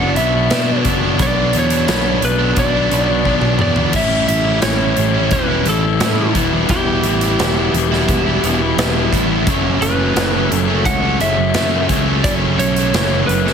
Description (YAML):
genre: quiet-loud alternative rock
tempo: 87 BPM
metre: 4/4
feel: straight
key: B minor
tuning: A4 = 435 Hz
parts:
  - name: lightly driven lead guitar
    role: melody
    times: 0.0-13.5 s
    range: G4 to F#5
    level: -20 LUFS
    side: right 1 dB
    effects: none
  - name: cranked stack guitar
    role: riff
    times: 0.0-13.5 s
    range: F#2 to E4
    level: -20 LUFS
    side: right 11 dB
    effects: overdrive
  - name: overdriven electric guitar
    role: riff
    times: 0.0-13.5 s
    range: F#2 to E4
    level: -19 LUFS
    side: left 14 dB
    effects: none
  - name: fuzz fingered electric bass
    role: bass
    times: 0.0-13.5 s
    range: E1 to B2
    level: -20 LUFS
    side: equal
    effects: overdrive
  - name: big rock drum kit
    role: drums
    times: 0.2-13.5 s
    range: crash cymbal, hi-hat, kick drum, snare drum, toms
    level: -21 LUFS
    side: equal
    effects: none
room: little or no reverb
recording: heavily compressed radio sound, multiband compression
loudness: -13 LUFS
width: side -7 dB against mid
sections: 0.0-13.5 A section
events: drum fill 3.3-4.0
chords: 0.0 Bm; 4.0 A7; 6.4 Em; 9.5 F#m